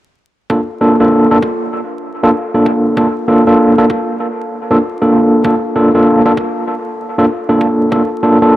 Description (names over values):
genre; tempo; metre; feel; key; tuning
glitch hop; 97 BPM; 4/4; swing 61% on 16ths; unclear; A4 = 440 Hz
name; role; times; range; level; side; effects
overdriven tine electric piano; stabs; 0.5-8.6 s; Bb3 to A4; -10 LUFS; equal; fast tremolo, sidechain pumping, low-pass filter, dub echo
electronic kick drum; drums; 0.5-8.1 s; none; -23 LUFS; right 1 dB; high-pass filter on kick
room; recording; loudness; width
wet spring reverb, RT60 2.7 s; echo-heavy mix, vinyl crackle; -10 LUFS; side -15 dB against mid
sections
0.5-8.6 A section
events
none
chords
0.5 Bbmaj7